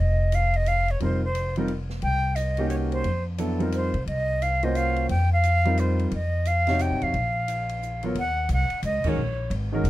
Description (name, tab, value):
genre	modal jazz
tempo	176 BPM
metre	3/4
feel	swing 63% on 8ths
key	unclear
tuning	A4 = 439 Hz
part	breathy bright concert flute	melody	0.0-9.5 s	C5 to G5	-26 LUFS	equal	none
part	upright bass	bass	0.0-9.9 s	F1 to C3	-25 LUFS	equal	none
part	open jazz drum kit	drums	0.3-9.9 s	crash cymbal, hi-hat, kick drum, ride cymbal, snare drum	-40 LUFS	equal	none
part	warm concert grand piano	accompaniment	1.0-9.8 s	C3 to Db5	-27 LUFS	equal	none
room	light reverb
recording	none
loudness	-22 LUFS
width	side -16 dB against mid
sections	0.0-8.2 A section; 8.2-9.9 B section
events	band accent 9.0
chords	0.0 F9sus4; 7.1 Bb5; 8.2 Ebm11